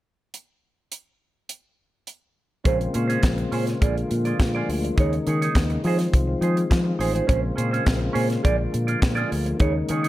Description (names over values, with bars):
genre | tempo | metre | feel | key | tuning
disco | 104 BPM | 4/4 | straight | Bb minor | A4 = 440 Hz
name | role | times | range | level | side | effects
tight funk drum kit | drums | 0.3-10.1 s | hi-hat, kick drum, snare drum | -23 LUFS | equal | gated reverb
clean electric guitar | accompaniment | 2.6-10.1 s | Db4 to D5 | -27 LUFS | right 5 dB | wah
mellow tonewheel organ | sustained chords | 2.7-10.1 s | Db3 to F4 | -27 LUFS | left 2 dB | chorus vibrato, slow rotary speaker
fingered electric bass | bass | 2.7-10.1 s | A1 to F3 | -24 LUFS | equal | none
room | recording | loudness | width
small room ambience | none | -20 LUFS | side -15 dB against mid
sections
0.3-2.7 A section; 2.7-10.1 B section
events
none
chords
0.3 N.C.; 2.7 Bbm9; 3.8 Bb7; 5.0 Eb7sus4; 5.8 Fm7; 7.3 Bbm9; 8.4 Bb7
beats
| 0.34 0.92 1.50 2.08 | 2.66 3.24 3.82 4.40 | 4.97 5.55 6.13 6.71 | 7.29 7.87 8.45 9.03 | 9.61